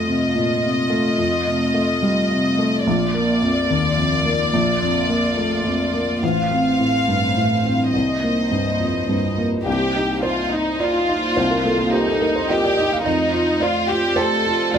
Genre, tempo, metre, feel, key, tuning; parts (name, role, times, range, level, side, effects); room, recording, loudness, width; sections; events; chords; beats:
neoclassical piano and strings; 107 BPM; 3/4; rubato; C dorian; A4 = 440 Hz
rich studio violin section; melody; 0.0-14.8 s; Eb4 to F5; -21 LUFS; left 1 dB
felt-muted upright piano; accompaniment; 0.0-14.8 s; A1 to F5; -20 LUFS; equal
warm studio string section; sustained chords; 0.0-14.8 s; A3 to Eb5; -27 LUFS; right 1 dB
light reverb; close, detailed microphones; -17 LUFS; side -8 dB against mid
0.0-9.7 A section; 9.7-14.8 B section
0.0 F7; 2.9 Bb; 6.2 F/A; 7.9 Cm7; 13.1 F7
0.07 0.63 | 1.19 1.75 2.31 | 2.86 3.42 3.98 | 4.53 5.09 5.66 | 6.22 6.79 7.36 | 7.93 8.51 9.09 | 9.66 10.23 10.80 | 11.36 11.93 12.49 | 13.06 13.62 14.18 | 14.74